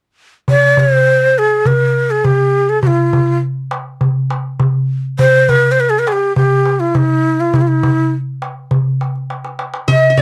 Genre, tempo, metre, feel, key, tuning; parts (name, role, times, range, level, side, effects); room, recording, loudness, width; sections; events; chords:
Arabic maqam ensemble; 102 BPM; 4/4; straight; A4 = 440 Hz
breathy ney; melody; 0.5-10.2 s; Eb4+47c to E5-49c; -14 LUFS; equal
darbuka; percussion; 0.5-10.2 s; -17 LUFS; equal
qanun; second line; 9.9-10.2 s; D5-50c to E5-50c; -19 LUFS; equal
light reverb; dry, close 1970s-style studio recording; -14 LUFS; mono
0.5-10.2 A section
drum fill 9.3-9.9